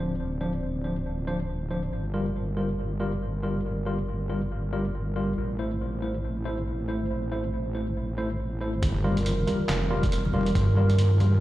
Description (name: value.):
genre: deep dubstep.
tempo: 139 BPM.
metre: 4/4.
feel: swing 59% on 16ths, half-time.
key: G dorian.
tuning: A4 = 440 Hz.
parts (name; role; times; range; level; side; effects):
dark analog pad; sustained chords; 0.0-11.4 s; G3 to D5; -34 LUFS; right 2 dB; wide subtle chorus.
barky tine electric piano; stabs; 0.0-11.3 s; F3 to C5; -31 LUFS; left 1 dB; medium stereo tremolo, dub echo.
wobble bass; bass; 0.0-11.4 s; D1 to G2; -27 LUFS; equal; chorus.
electronic kick drum; drums; 8.8-10.7 s; none; -28 LUFS; equal; none.
trip hop sampler-style drum kit; drums; 8.8-11.3 s; handclaps, hi-hat, snare drum; -34 LUFS; equal; none.
congas; percussion; 8.8-11.3 s; none; -32 LUFS; equal; none.
room: light reverb, digital ambience.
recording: played on a big sound system in a bare room, stone room reverb.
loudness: -25 LUFS.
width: side -15 dB against mid.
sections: 0.0-8.8 A section; 8.8-11.4 B section.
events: drop 8.8-11.4.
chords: 0.0 Dm7; 1.9 Gm7; 5.4 Am; 8.8 Gm7.